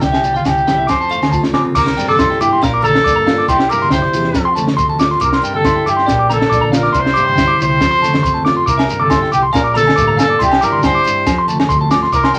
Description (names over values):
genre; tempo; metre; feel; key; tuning
highlife guitar band; 139 BPM; 4/4; straight; C mixolydian; A4 = 441 Hz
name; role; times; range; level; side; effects
mellow trumpet; melody; 0.0-12.4 s; F4 to C5; -18 LUFS; equal; none
picked steel-string acoustic guitar; accompaniment; 0.0-12.4 s; A2 to G4; -25 LUFS; equal; none
clean electric guitar; arpeggios; 0.0-12.4 s; D5 to D6; -19 LUFS; equal; none
fingered electric bass; bass; 0.0-12.4 s; Bb1 to G2; -25 LUFS; equal; none
compact cocktail drum kit; drums; 0.0-12.3 s; crash cymbal, kick drum, snare drum; -21 LUFS; equal; none
congas; percussion; 0.0-12.4 s; none; -26 LUFS; equal; none
shekere; percussion; 0.0-12.4 s; none; -31 LUFS; equal; none
agogo bells; percussion; 0.1-1.7, 8.8-12.3 s; none; -26 LUFS; equal; none
room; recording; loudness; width
wet small room ambience, RT60 0.5 s; none; -14 LUFS; mono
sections
0.0-1.8 A section; 1.8-12.4 B section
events
none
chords
0.0 C; 0.9 F; 1.8 C; 2.6 Bb; 3.5 C; 4.4 F; 5.2 C; 6.1 Bb; 6.9 C; 7.8 F; 8.7 C; 9.5 Bb; 10.4 C; 11.3 F